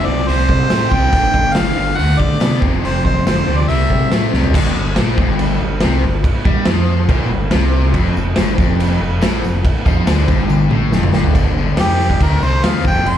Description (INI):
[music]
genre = classic rock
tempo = 141 BPM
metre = 4/4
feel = straight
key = unclear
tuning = A4 = 442 Hz
[part]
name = clear harmonica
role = melody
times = 0.0-4.3, 11.8-13.2 s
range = G4 to C6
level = -19 LUFS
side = equal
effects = plate reverb, slapback echo
[part]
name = cranked stack guitar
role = riff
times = 0.0-13.2 s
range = F2 to B3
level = -22 LUFS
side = left 9 dB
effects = overdrive, slapback echo
[part]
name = overdriven semi-hollow guitar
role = riff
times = 0.0-11.3 s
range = F2 to B3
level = -22 LUFS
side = right 9 dB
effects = slapback echo
[part]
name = fingered electric bass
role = bass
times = 0.1-13.2 s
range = F1 to D3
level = -18 LUFS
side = equal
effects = none
[part]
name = raw garage drum kit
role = drums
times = 0.3-13.2 s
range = crash cymbal, hi-hat, kick drum, snare drum, toms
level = -16 LUFS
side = equal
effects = none
[part]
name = tambourine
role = percussion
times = 0.7-4.2, 8.2-13.2 s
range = none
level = -43 LUFS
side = right 4 dB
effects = none
[sound]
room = light reverb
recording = live gig heard through the venue's PA, club reverb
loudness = -13 LUFS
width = side -10 dB against mid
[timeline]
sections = 0.0-4.5 A section; 4.5-11.4 B section; 11.4-13.2 C section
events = drum fill 4.3, 10.5-11.4; harmonica solo 11.4-13.2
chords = 0.3 C5; 1.1 G5; 2.0 D5; 2.6 F5; 3.7 C; 4.5 Gmadd11; 7.9 F69; 11.4 G5; 12.2 D5